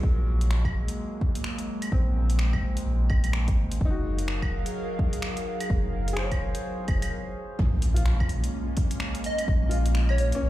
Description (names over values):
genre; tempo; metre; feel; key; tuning
future garage; 127 BPM; 4/4; swing 61% on 16ths; Bb minor; A4 = 438 Hz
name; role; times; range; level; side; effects
bright upright piano; accompaniment; 0.0-10.5 s; Gb3 to Db5; -37 LUFS; left 2 dB; vintage 12-bit sampler grit, sidechain pumping, tape echo
airy breathy pad; sustained chords; 0.0-10.5 s; Gb3 to F5; -34 LUFS; right 1 dB; chorus, vintage 12-bit sampler grit, sidechain pumping
warm sub bass; bass; 0.0-10.5 s; Gb1 to Bb1; -25 LUFS; equal; tube saturation, sidechain pumping
electronic kick drum; drums; 0.0-9.6 s; none; -26 LUFS; equal; overdrive
deep house drum kit; drums; 0.4-10.4 s; claves, finger snaps, hi-hat; -35 LUFS; equal; overdrive
impact; sound effects; 7.6-9.5 s; none; -32 LUFS; equal; none
plucky unison lead; melody; 9.3-10.3 s; Db5 to Eb5; -30 LUFS; equal; vintage 12-bit sampler grit, dub echo
room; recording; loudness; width
little or no reverb; played on a big sound system in a bare room, large studio reverb; -24 LUFS; side -15 dB against mid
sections
0.0-7.6 A section; 7.6-10.5 B section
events
stop 7.1-7.6; impact 7.6-9.5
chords
0.0 Bbsus2; 3.8 Gbmaj9; 7.6 Bbm7